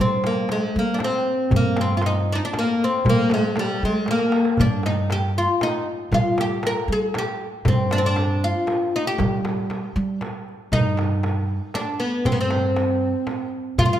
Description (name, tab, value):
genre	Arabic maqam ensemble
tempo	117 BPM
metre	3/4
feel	straight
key	G maqam bayati, G maqam hijaz from 10.7 s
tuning	A4 = 436 Hz
part	oud	melody	0.0-14.0 s	G3 to Bb4	-22 LUFS	left 1 dB	none
part	upright bass	bass	0.0-14.0 s	G2 to G3	-24 LUFS	right 1 dB	none
part	darbuka	percussion	0.2-13.9 s	none	-28 LUFS	right 2 dB	none
part	frame drum	percussion	0.2-13.9 s	none	-28 LUFS	left 2 dB	none
room	moderate recital hall reverb, RT60 1.5 s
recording	none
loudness	-19 LUFS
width	side -11 dB against mid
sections	0.0-10.7 A section; 10.7-14.0 B section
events	drum fill 4.1-4.6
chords	none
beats	0.50 1.01 | 1.52 2.03 2.55 | 3.06 3.57 4.08 | 4.59 5.10 5.61 | 6.12 6.64 7.15 | 7.66 8.17 8.68 | 9.19 9.70 10.21 | 10.72 11.24 11.75 | 12.26 12.77 13.28 | 13.79